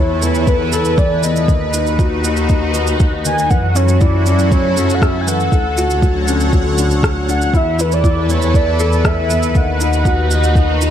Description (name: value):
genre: piano and strings electronica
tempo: 119 BPM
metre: 4/4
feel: straight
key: unclear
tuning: A4 = 435 Hz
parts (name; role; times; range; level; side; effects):
- warm velvety synth lead; melody; 0.0-10.9 s; B4 to G#5; -20 LUFS; right 2 dB; chorus, cassette tape, tape echo
- lush unison pad; sustained chords; 0.0-10.9 s; D3 to F#5; -22 LUFS; equal; chorus, phaser, sidechain pumping
- felt-muted upright piano; riff; 0.0-10.9 s; D#3 to B4; -20 LUFS; left 4 dB; tape echo
- rich studio double bass section; bass; 0.0-10.9 s; D2 to F#2; -17 LUFS; equal; sidechain pumping
- electronic shaker and rim click; drums; 0.2-10.9 s; none; -24 LUFS; right 2 dB; none
- electronic kick drum; drums; 0.5-10.7 s; none; -14 LUFS; equal; none
room: light reverb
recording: none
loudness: -12 LUFS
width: side -10 dB against mid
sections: 0.0-10.9 A section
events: none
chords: 0.0 Esus4; 1.5 B/D#; 3.5 F#m7; 5.5 Dmaj7; 7.5 Esus4; 9.6 B/D#